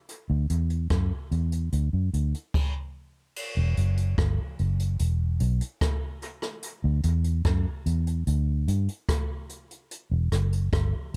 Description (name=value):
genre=dub reggae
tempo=73 BPM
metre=4/4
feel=straight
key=unclear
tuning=A4 = 441 Hz
part: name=jazz brush drum kit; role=drums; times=0.1-11.2 s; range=crash cymbal, hi-hat, kick drum, rim click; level=-32 LUFS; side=equal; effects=none
part: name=vintage muted fingered electric bass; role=bass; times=0.3-11.2 s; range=E1 to G2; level=-26 LUFS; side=equal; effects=none
room=little or no reverb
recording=none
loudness=-27 LUFS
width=mono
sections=0.0-3.4 A section; 3.4-11.2 B section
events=stop 2.5-3.4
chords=none